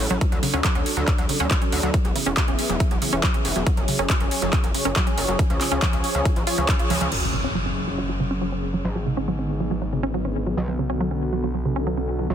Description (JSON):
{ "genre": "uplifting trance", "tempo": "139 BPM", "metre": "4/4", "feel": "straight", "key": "F# minor", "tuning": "A4 = 439 Hz", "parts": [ { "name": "filtered supersaw swell", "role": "sustained chords", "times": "0.0-12.3 s", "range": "D3 to E5", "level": "-28 LUFS", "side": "equal", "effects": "sidechain pumping, low-pass filter" }, { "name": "gritty driven synth bass", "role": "bass", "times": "0.0-12.3 s", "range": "E1 to D2", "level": "-27 LUFS", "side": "equal", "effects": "sidechain pumping" }, { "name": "big-room dance drum kit", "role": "drums", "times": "0.0-7.2 s", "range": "crash cymbal, handclaps, hi-hat", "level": "-27 LUFS", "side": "right 1 dB", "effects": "overdrive, sidechain pumping on hats, small room ambience, sidechain pumping on cymbals" }, { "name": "wide unison pluck", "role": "arpeggios", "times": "0.1-12.3 s", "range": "C#3 to E#4", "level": "-27 LUFS", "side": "right 2 dB", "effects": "sidechain pumping, ping-pong delay" }, { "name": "electronic kick drum", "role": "drums", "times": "0.2-6.8 s", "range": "none", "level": "-22 LUFS", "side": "equal", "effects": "overdrive, small room ambience" }, { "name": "impact", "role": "sound effects", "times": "7.1-8.8 s", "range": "none", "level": "-31 LUFS", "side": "left 1 dB", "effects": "none" } ], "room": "light reverb", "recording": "dense, heavily limited modern master", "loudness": "-20 LUFS", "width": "side -9 dB against mid", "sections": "0.0-7.1 A section; 7.1-12.3 B section", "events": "filter sweep on supersaw synth 0.0-7.1, 7.1-12.3; band accent 6.7; impact 7.1-8.8; filter sweep on synth arpeggio sound 7.1-12.3", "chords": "0.2 D; 1.9 E; 3.7 F#sus2; 5.4 C#; 7.1 F#sus2; 8.8 G#dim; 10.6 Bm7" }